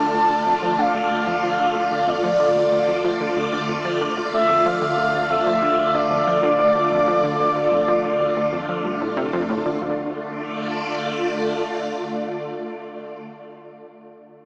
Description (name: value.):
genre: ambient, sequencer-driven space music.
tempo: 93 BPM.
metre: 4/4.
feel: straight.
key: D minor.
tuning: A4 = 444 Hz.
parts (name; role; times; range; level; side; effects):
expressive portamento lead; melody; 0.0-9.2 s; D5 to A5; -22 LUFS; equal; lush chorus, tape echo.
phased string machine; sustained chords; 0.0-13.2 s; D3 to D5; -26 LUFS; equal; ensemble chorus, phaser.
analog pluck; riff; 0.0-10.1 s; D2 to F3; -31 LUFS; equal; chorus, tape echo.
room: wet cathedral reverb, RT60 5.9 s.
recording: in a vast, echoing space, small speaker sound.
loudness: -21 LUFS.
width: mono.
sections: 0.0-9.8 A section; 9.8-12.4 B section.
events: none.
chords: 0.0 Dm.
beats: 0.14 0.79 1.43 | 2.08 2.72 3.37 4.01 | 4.66 5.30 5.95 6.59 | 7.24 7.88 8.53 9.17 | 9.82 10.46 11.11 11.76.